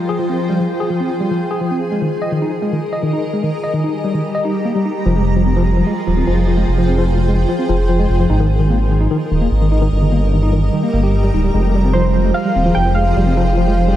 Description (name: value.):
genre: IDM.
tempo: 148 BPM.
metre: 4/4.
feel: straight.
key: F minor.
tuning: A4 = 439 Hz.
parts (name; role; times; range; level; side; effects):
granular cloud pad; sustained chords; 0.0-14.0 s; F3 to Bb5; -20 LUFS; equal; built-in reverb.
tine electric piano; arpeggios; 0.1-13.9 s; Eb3 to Eb5; -19 LUFS; left 1 dB; overdrive, fast stereo tremolo, digital delay.
dark detuned saw bass; bass; 5.1-13.9 s; D1 to Ab1; -15 LUFS; equal; none.
warbly lo-fi synth keys; melody; 11.9-14.0 s; C5 to G5; -19 LUFS; right 1 dB; chorus, digital delay.
room: light reverb, digital ambience.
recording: none.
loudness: -14 LUFS.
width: side -12 dB against mid.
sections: 0.0-5.1 A section; 5.1-14.0 B section.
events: none.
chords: 0.0 Fmadd9; 1.8 Absus2; 3.4 Eb; 5.1 Fmadd9; 9.9 Eb/G; 11.5 Fmadd9.